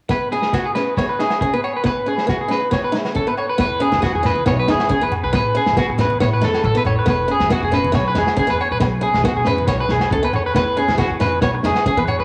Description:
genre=highlife guitar band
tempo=138 BPM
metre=4/4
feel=straight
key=E major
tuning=A4 = 440 Hz
part: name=picked old ladder-braced acoustic guitar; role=accompaniment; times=0.1-12.2 s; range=B3 to D#4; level=-26 LUFS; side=equal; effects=cassette tape
part: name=electric guitar at the edge of break-up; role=arpeggios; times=0.1-12.2 s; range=F#4 to C#5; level=-21 LUFS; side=equal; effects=spring reverb, cassette tape, analog delay
part: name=vintage drum kit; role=drums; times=0.1-12.0 s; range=kick drum, snare drum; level=-26 LUFS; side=equal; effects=cassette tape
part: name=agogo bells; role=percussion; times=0.1-12.2 s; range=none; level=-34 LUFS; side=equal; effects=none
part: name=upright bass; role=bass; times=3.6-12.2 s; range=E1 to E3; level=-26 LUFS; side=equal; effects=none
part: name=congas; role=percussion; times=3.9-12.2 s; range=none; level=-28 LUFS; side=equal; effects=none
room=light reverb, small room ambience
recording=home recording on cassette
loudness=-18 LUFS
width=mono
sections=0.1-3.6 A section; 3.6-12.2 B section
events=none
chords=0.1 Bsus2; 1.9 Aadd9 (rootless); 3.6 E; 5.3 Aadd9; 7.1 E; 8.8 N.C.; 10.6 E

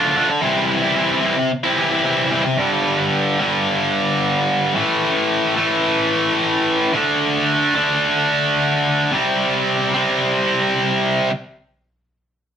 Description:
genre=rock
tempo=110 BPM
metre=4/4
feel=straight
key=unclear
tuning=A4 = 438 Hz
part: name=tight distorted guitar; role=solo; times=0.0-11.3 s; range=G2 to F4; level=-16 LUFS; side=equal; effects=distortion
room=wet studio reverb, RT60 0.6 s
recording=band playing live in one room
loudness=-16 LUFS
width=side -8 dB against mid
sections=0.0-2.6 A section; 2.6-11.3 B section; 11.3-12.6 C section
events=none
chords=0.4 C; 2.6 G5; 4.7 A5; 6.9 D5; 9.1 C5; 11.3 N.C.

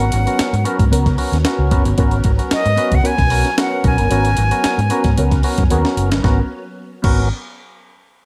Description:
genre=funk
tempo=113 BPM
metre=4/4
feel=straight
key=G# minor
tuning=A4 = 441 Hz
part: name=silver concert flute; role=melody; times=0.0-5.7 s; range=D#5 to G#5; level=-22 LUFS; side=equal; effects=none
part: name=mellow electric guitar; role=accompaniment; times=0.0-7.2 s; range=B3 to A#4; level=-26 LUFS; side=equal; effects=wah, spring reverb
part: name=soft string machine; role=sustained chords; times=0.1-6.5 s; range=F#3 to A#4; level=-31 LUFS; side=equal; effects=ensemble chorus
part: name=percussive tonewheel organ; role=stabs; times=0.0-7.3 s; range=B3 to B4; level=-26 LUFS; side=equal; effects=overdrive
part: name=fingered electric bass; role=bass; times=0.0-7.3 s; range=F#1 to G#2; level=-19 LUFS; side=equal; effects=none
part: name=breakbeat sampler-style drum kit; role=drums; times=0.0-7.2 s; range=crash cymbal, hi-hat, kick drum, snare drum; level=-21 LUFS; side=equal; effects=none
room=light reverb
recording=none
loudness=-16 LUFS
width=mono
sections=0.0-6.2 A section; 6.2-8.3 B section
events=drum fill 5.7-6.2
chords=0.0 G#m11

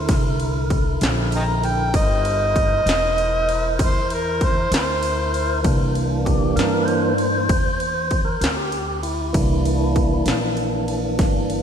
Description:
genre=slow blues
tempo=65 BPM (dotted quarters)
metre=12/8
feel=straight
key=C mixolydian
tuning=A4 = 440 Hz
part: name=overdriven harmonica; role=melody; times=0.0-5.6 s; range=Bb4 to Bb5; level=-22 LUFS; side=equal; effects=none
part: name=tonewheel organ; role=sustained chords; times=0.0-11.6 s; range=D3 to C5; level=-23 LUFS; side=equal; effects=slow rotary speaker
part: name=upright bass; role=bass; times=0.0-11.6 s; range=E1 to G2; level=-24 LUFS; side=equal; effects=none
part: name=industrial drum kit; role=drums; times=0.1-11.6 s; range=kick drum, ride cymbal, snare drum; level=-23 LUFS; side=equal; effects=none
room=moderate lush hall reverb, RT60 2.4 s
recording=dreamy mix soaked in reverb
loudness=-18 LUFS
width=side -8 dB against mid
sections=0.0-5.6 A section; 5.6-11.6 A section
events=harmonica solo 0.0-5.6; tonewheel organ solo 5.6-11.6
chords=0.0 C7

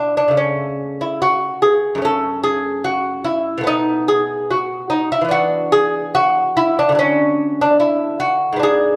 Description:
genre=classical, baroque-style dance for lute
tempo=72 BPM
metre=4/4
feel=rubato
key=unclear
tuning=A4 = 442 Hz
part: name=lute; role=solo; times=0.0-9.0 s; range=F#2 to A4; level=-17 LUFS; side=equal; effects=none
room=moderate recital hall reverb, RT60 1.7 s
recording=dark, warm production, lossy compression artefacts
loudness=-17 LUFS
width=mono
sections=0.0-9.0 A section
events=none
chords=0.4 A/C#; 2.0 F#m; 3.7 B7; 5.3 E5; 7.0 D

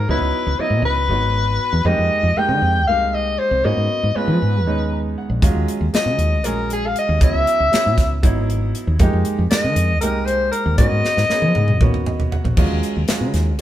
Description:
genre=electric jazz fusion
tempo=236 BPM (eighths)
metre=7/8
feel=straight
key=unclear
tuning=A4 = 440 Hz
part: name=warm soprano saxophone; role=melody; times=0.0-12.0 s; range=Ab4 to G5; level=-19 LUFS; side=left 2 dB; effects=none
part: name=clear baby grand piano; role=accompaniment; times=0.0-13.5 s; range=Gb3 to Bb5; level=-24 LUFS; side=right 3 dB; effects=none
part: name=woody fretless electric bass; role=bass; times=0.0-13.6 s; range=Ab1 to F3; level=-20 LUFS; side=equal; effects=none
part: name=tight funk drum kit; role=drums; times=5.4-13.6 s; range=crash cymbal, hi-hat, kick drum, snare drum, toms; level=-19 LUFS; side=equal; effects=none
room=moderate stone room reverb, RT60 1.3 s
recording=band playing live in one room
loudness=-16 LUFS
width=side -12 dB against mid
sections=0.0-12.6 A section; 12.6-13.6 A section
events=grand piano fill 4.7-5.4, 11.8-12.6; drum fill 11.0-12.6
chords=0.1 Dbm11; 1.9 Fm11; 3.6 Abm11; 5.4 Ebm11; 7.2 Dbm11; 9.0 Fm11; 10.8 Abm11; 12.6 Ebm11

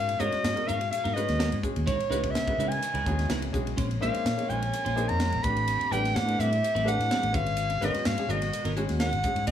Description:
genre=electric jazz fusion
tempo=126 BPM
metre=4/4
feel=straight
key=unclear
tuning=A4 = 435 Hz
part: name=warm soprano saxophone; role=melody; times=0.0-9.5 s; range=Db5 to B5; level=-29 LUFS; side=equal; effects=slapback echo
part: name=clear grand piano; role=accompaniment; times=0.0-9.5 s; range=Ab3 to D5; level=-33 LUFS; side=left 3 dB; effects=none
part: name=rich chamber string section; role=sustained chords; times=0.0-9.5 s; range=Bb2 to G4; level=-38 LUFS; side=equal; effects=none
part: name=fingered electric bass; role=bass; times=0.0-9.5 s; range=Ab1 to Db3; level=-30 LUFS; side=equal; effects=none
part: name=clean electric guitar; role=stabs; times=0.1-9.5 s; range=Fb3 to C5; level=-36 LUFS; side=right 3 dB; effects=analog chorus
part: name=crisp fusion drum kit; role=drums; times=0.1-9.5 s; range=hi-hat, kick drum, ride cymbal, snare drum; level=-33 LUFS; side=equal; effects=none
room=moderate club reverb, RT60 0.5 s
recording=small room ambience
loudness=-25 LUFS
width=side -9 dB against mid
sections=0.0-9.5 A section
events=none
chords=0.0 Abm9; 1.9 Dbm9; 3.8 Bbm9; 5.4 Am9; 7.3 Abm9

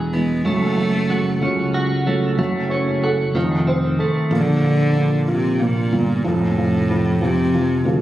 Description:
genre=pop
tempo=62 BPM (dotted quarters)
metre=6/8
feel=straight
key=Bb major from 4.3 s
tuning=A4 = 438 Hz
part: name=felt-muted upright piano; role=accompaniment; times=0.0-8.0 s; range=E3 to C#5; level=-24 LUFS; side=right 2 dB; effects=none
part: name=clean electric guitar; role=arpeggios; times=0.0-4.4 s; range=Eb3 to G#4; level=-23 LUFS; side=right 2 dB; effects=lush chorus, tape echo
part: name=sustaining fretless electric bass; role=bass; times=0.0-8.0 s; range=E1 to D2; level=-21 LUFS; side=equal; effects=none
part: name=warm cello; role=melody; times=0.1-8.0 s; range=A2 to A3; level=-20 LUFS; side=equal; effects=none
room=light reverb, small room ambience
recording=recorded on a phone in the room, club reverb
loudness=-16 LUFS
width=side -14 dB against mid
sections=0.0-2.4 A section; 2.4-4.3 B section; 4.3-8.0 C section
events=none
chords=0.5 F#m; 3.4 F7; 4.3 Bb; 6.3 F

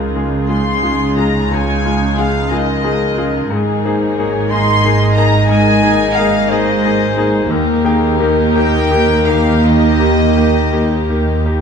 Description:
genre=cinematic, emotional film score for orchestra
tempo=54-62 BPM (dotted quarters)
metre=6/8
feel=rubato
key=Ab major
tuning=A4 = 440 Hz
part: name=clear clarinet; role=second line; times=0.0-11.2 s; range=G4 to Eb5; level=-22 LUFS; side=left 1 dB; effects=none
part: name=warm symphonic violin section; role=second line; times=0.0-11.6 s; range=F4 to Bb4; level=-22 LUFS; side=left 3 dB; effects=none
part: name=bright concert grand piano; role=accompaniment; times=0.0-11.6 s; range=Db2 to G5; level=-18 LUFS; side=left 4 dB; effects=none
part: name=warm studio viola section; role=accompaniment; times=0.0-11.6 s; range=Ab3 to Eb4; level=-20 LUFS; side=right 3 dB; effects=none
part: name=dark studio double bass section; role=bass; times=0.0-11.6 s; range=Ab1 to Eb2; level=-18 LUFS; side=right 2 dB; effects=none
part: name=warm studio cello section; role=bass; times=0.0-11.6 s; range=Eb2 to Db3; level=-20 LUFS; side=right 3 dB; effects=none
part: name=rich studio violin section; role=melody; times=0.5-11.5 s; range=Eb5 to C6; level=-19 LUFS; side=left 2 dB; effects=none
room=wet recital hall reverb, RT60 1.5 s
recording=dark, warm production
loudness=-11 LUFS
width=side -6 dB against mid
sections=0.0-11.6 A section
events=none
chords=0.0 Dbadd9; 3.5 Absus2; 7.5 Eb

